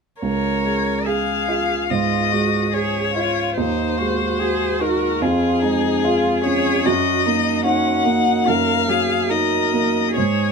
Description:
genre	classical, slow romantic movement for piano trio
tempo	72 BPM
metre	4/4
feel	rubato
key	Db major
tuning	A4 = 440 Hz
part	rich violin	melody	0.2-10.5 s	Ab4 to Gb5	-21 LUFS	left 8 dB	none
part	warm cello	second line	0.2-10.5 s	Db4 to Bb4	-24 LUFS	right 5 dB	none
part	dark baby grand piano	accompaniment	0.2-10.5 s	Db2 to Ab4	-20 LUFS	right 2 dB	none
room	light reverb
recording	minimal, uncompressed stereo recording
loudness	-17 LUFS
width	side -5 dB against mid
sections	0.2-10.5 A section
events	none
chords	0.2 Db; 3.6 Ab7/Eb; 5.2 Db/F; 6.9 Ebm/Gb

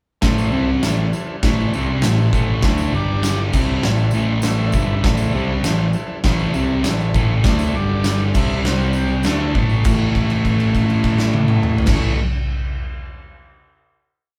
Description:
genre	garage rock duo or trio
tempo	100 BPM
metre	4/4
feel	straight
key	A minor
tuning	A4 = 444 Hz
part	combo organ	sustained chords	0.2-12.1 s	C4 to A5	-31 LUFS	equal	none
part	thick fuzz guitar	riff	0.2-12.2 s	G2 to D4	-22 LUFS	equal	distortion
part	picked electric bass	bass	0.2-12.1 s	G1 to D2	-25 LUFS	equal	none
part	oversized low-tuned drum kit	drums	0.2-12.0 s	crash cymbal, kick drum, snare drum, toms	-22 LUFS	equal	none
part	tambourine	percussion	0.4-10.1 s	none	-42 LUFS	equal	none
room	wet small room ambience, RT60 0.5 s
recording	band playing live in one room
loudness	-18 LUFS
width	mono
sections	0.2-9.9 riff; 9.9-12.2 final chord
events	transistor combo organ fill 4.1-5.0, 8.1-9.9; held note 9.9-11.9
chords	0.2 Am; 2.9 G5; 3.5 Am; 7.8 G5; 8.4 Am; 8.7 C5; 9.3 Am; 9.9 A

